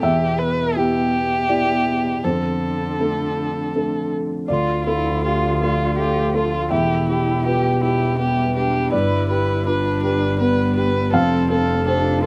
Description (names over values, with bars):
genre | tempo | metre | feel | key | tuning
neoclassical piano and strings | 81 BPM | 3/4 | rubato | unclear | A4 = 440 Hz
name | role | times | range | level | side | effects
muted violin | melody | 0.0-12.3 s | F4 to B4 | -26 LUFS | equal | slapback echo
muted cello | second line | 0.0-12.3 s | B2 to G4 | -29 LUFS | equal | slapback echo
felt-muted upright piano | accompaniment | 0.0-12.3 s | D2 to F5 | -23 LUFS | equal | none
evolving wavetable pad | sustained chords | 5.6-12.3 s | F3 to E5 | -36 LUFS | equal | none
muted double bass | bass | 4.5-12.3 s | E1 to D2 | -26 LUFS | equal | none
room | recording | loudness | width
little or no reverb | recorded outdoors, with no room sound | -20 LUFS | mono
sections
0.0-4.5 A section; 4.5-12.3 B section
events
none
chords
0.0 Em; 2.2 Dm7/F; 4.5 Dm; 6.7 Em; 8.9 G; 11.1 F6